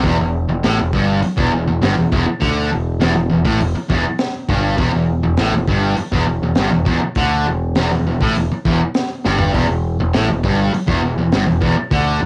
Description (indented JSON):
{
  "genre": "garage rock duo or trio",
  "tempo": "101 BPM",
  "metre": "4/4",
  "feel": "straight",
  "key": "E minor",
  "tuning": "A4 = 442 Hz",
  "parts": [
    { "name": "fuzz guitar", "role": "riff", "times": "0.0-12.3 s", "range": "E2 to D3", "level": "-19 LUFS", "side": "equal", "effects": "distortion, cassette tape" },
    { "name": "growling picked electric bass", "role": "bass", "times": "0.0-12.3 s", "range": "E1 to D2", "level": "-22 LUFS", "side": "equal", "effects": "overdrive" },
    { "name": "crunchy breakbeat drum kit", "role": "drums", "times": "0.0-12.1 s", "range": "hi-hat, kick drum, snare drum, toms", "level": "-24 LUFS", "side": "equal", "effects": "cassette tape" }
  ],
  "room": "light reverb",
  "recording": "home recording on cassette",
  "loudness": "-17 LUFS",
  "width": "mono",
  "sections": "0.0-12.3 A section",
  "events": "drum fill 9.2",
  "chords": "0.0 Em"
}